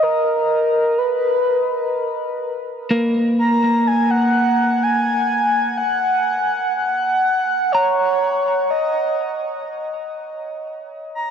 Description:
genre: ambient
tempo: 62 BPM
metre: 4/4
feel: straight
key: unclear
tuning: A4 = 440 Hz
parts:
  - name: breathy flute-like synth lead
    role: melody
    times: 0.0-11.3 s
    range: A#4 to A#5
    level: -18 LUFS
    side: equal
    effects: wide subtle chorus, ping-pong delay
  - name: clean electric guitar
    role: arpeggios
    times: 2.9-10.7 s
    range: A#3 to A#5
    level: -20 LUFS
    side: left 1 dB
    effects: ping-pong delay
room: wet huge ambient reverb, RT60 7.5 s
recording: worn, warbling old tape, cassette tape, warbly pitch drift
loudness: -16 LUFS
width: side -7 dB against mid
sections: 0.0-11.3 A section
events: fade-out 8.1-11.3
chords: 0.0 N.C.; 2.9 F#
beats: 0.01 0.98 1.95 | 2.91 3.88 4.85 5.82 | 6.79 7.75 8.72 9.69 | 10.66

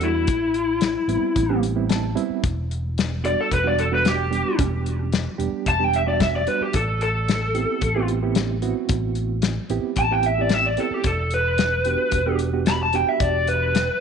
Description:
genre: straight-eighth soul blues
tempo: 112 BPM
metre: 4/4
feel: straight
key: E minor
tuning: A4 = 440 Hz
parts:
  - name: lead guitar through a small cranked amp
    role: melody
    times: 0.0-14.0 s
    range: E4 to B5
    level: -22 LUFS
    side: left 1 dB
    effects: overdrive
  - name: reed electric piano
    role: accompaniment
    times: 0.0-13.8 s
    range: G3 to A5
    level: -27 LUFS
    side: right 12 dB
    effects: fast tremolo
  - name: fingered electric bass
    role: bass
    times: 0.0-13.9 s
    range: E1 to E2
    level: -26 LUFS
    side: equal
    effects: none
  - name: warm soul drum kit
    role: drums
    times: 0.0-13.9 s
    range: hi-hat, kick drum, snare drum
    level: -25 LUFS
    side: left 4 dB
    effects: none
room: light reverb, small room ambience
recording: 1960s-style stereo, nothing above 10.5 kHz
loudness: -19 LUFS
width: side -6 dB against mid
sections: 0.0-14.0 A section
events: reed electric piano fill 1.6-2.4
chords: 0.3 Am7; 2.4 Em7; 6.7 Am7; 11.1 Em7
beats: | 0.29 0.82 1.36 1.90 | 2.44 2.98 3.52 4.05 | 4.59 5.13 5.67 6.21 | 6.75 7.28 7.82 8.36 | 8.90 9.44 9.97 10.51 | 11.05 11.59 12.13 12.67 | 13.21 13.75

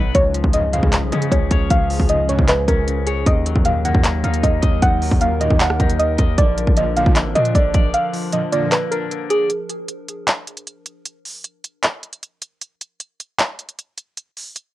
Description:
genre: hip hop, trap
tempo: 154 BPM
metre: 4/4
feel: half-time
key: unclear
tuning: A4 = 440 Hz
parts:
  - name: clean electric guitar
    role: accompaniment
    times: 0.0-9.5 s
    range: B2 to Eb5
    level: -28 LUFS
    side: left 9 dB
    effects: cassette tape
  - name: warbly tape-like pad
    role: sustained chords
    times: 0.0-9.5 s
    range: F3 to B4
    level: -29 LUFS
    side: left 1 dB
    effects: chorus, built-in reverb, cassette tape
  - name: distorted 808-style bass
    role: bass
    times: 0.0-7.9 s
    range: Ab1 to Db3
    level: -21 LUFS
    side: equal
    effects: distortion
  - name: soft round pluck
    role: melody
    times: 0.1-9.5 s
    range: Ab4 to Gb5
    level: -20 LUFS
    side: right 1 dB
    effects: chorus, low-pass filter, cassette tape, analog delay
  - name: trap drum kit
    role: drums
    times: 0.1-14.7 s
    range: handclaps, hi-hat, kick drum, rim click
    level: -18 LUFS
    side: equal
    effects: none
  - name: big bright polysynth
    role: stabs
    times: 0.5-8.7 s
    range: F2 to F3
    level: -26 LUFS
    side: right 1 dB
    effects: cassette tape, analog delay
room: little or no reverb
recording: home recording on cassette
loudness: -15 LUFS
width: side -15 dB against mid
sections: 0.0-9.5 A section; 9.5-14.7 B section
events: break 7.9-9.5, 9.5-14.7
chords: 0.1 Db; 3.3 Ebm; 6.4 Bb; 9.5 N.C.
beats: | 0.15 0.54 0.93 1.32 | 1.71 2.10 2.49 2.88 | 3.27 3.65 4.04 4.43 | 4.82 5.21 5.60 5.99 | 6.38 6.77 7.16 7.55 | 7.94 8.33 8.72 9.11 | 9.50 9.89 10.28 10.67 | 11.06 11.45 11.84 12.23 | 12.62 13.01 13.39 13.78 | 14.17 14.56

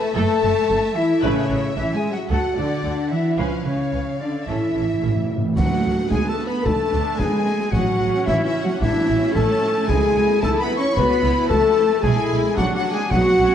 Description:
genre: cinematic, heroic adventure film score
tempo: 111 BPM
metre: 4/4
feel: straight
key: D lydian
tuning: A4 = 440 Hz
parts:
  - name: warm symphonic violin section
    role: melody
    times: 0.0-13.5 s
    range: E5 to C#6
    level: -32 LUFS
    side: left 3 dB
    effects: none
  - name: concert flute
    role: second line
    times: 0.0-13.5 s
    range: C#5 to C#6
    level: -30 LUFS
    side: left 1 dB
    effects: none
  - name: warm symphonic violin section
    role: second line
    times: 0.0-13.5 s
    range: C#5 to C#6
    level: -31 LUFS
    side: left 2 dB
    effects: none
  - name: mellow French horn section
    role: sustained chords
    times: 0.0-13.5 s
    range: C#4 to C#5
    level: -21 LUFS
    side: left 2 dB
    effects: none
  - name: clear symphonic cello section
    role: bass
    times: 0.0-13.5 s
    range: C#3 to C#4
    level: -26 LUFS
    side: right 3 dB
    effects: none
  - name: warm symphonic viola section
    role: accompaniment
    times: 0.2-13.5 s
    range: A3 to B4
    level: -29 LUFS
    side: equal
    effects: none
  - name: rich symphonic double bass section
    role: bass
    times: 0.2-13.5 s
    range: F#1 to D2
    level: -25 LUFS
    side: right 3 dB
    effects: none
  - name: timpani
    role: percussion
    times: 1.2-8.5 s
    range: A2 to D3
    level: -27 LUFS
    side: right 1 dB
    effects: none
  - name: warm clarinet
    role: second line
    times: 5.6-13.5 s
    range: E4 to C#5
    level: -30 LUFS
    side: left 1 dB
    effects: none
  - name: concert snare drum, clash cymbals and concert bass drum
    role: drums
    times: 5.6-13.5 s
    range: none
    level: -27 LUFS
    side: equal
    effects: none
room: wet scoring stage reverb, RT60 1.9 s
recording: dark, warm production, nothing above 10.8 kHz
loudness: -17 LUFS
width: side -9 dB against mid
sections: 0.0-5.6 A section; 5.6-13.5 B section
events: timpani fill 4.5-5.6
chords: 0.2 F#m7; 1.2 Aadd9; 2.3 D; 3.4 C#7; 4.5 A; 5.6 D; 7.7 A; 9.9 C#m; 12.0 Bm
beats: 0.15 0.69 | 1.23 1.77 2.31 2.85 | 3.38 3.93 4.48 5.03 | 5.57 6.12 6.66 7.19 | 7.73 8.28 8.81 9.35 | 9.89 10.43 10.96 11.50 | 12.04 12.57 13.11

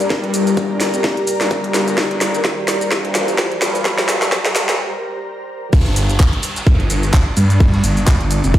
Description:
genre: bass house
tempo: 128 BPM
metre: 4/4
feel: swing 57% on 16ths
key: G minor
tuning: A4 = 441 Hz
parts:
  - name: dark analog pad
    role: sustained chords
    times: 0.0-5.7 s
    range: G3 to D5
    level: -22 LUFS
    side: left 2 dB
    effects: chorus, phaser, sidechain pumping
  - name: phased detuned saw bass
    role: bass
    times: 0.0-8.6 s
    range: F1 to G2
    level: -18 LUFS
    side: equal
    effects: phaser, overdrive, sidechain pumping, high-pass filter
  - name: garage drum kit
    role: drums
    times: 0.0-8.6 s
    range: crash cymbal, handclaps, hi-hat, shaker, snare drum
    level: -20 LUFS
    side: equal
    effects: overdrive, high-pass filter on hats, high-pass filter on snare, high-pass filter on perc, high-pass filter on cymbals
  - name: riser and downlifter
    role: sound effects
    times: 0.2-8.6 s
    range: none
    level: -31 LUFS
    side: equal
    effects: none
  - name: ethereal airy pad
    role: texture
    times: 0.0-8.6 s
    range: G4 to Bb5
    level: -24 LUFS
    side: equal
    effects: ensemble chorus, built-in reverb, sidechain pumping
  - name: electronic kick drum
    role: drums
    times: 0.1-8.6 s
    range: none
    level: -13 LUFS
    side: equal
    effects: high-pass filter on kick
  - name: jazz brush drum kit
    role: drums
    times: 5.7-8.6 s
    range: hi-hat, ride cymbal, snare drum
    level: -32 LUFS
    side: equal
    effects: sidechain pumping on cymbals, high-pass filter on cymbals, sidechain pumping on hats, high-pass filter on hats, high-pass filter on snare, high-pass filter on room
room: moderate plate reverb, RT60 1.2 s, studio ambience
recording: played on a big sound system in a bare room, stone room reverb, high-pass filter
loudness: -14 LUFS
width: side -12 dB against mid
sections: 0.0-5.7 A section; 5.7-8.6 B section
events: build-up 0.0-5.7; drum fill 0.0-4.8; filter sweep 0.0-5.7; riser 0.2-4.8; break 4.8-5.7; drop 5.7-8.6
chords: 0.0 Gm; 5.7 G5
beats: | 0.10 0.57 1.04 1.51 | 1.98 2.45 2.92 3.38 | 3.85 4.32 4.79 5.26 | 5.73 6.20 6.67 7.13 | 7.60 8.07 8.54

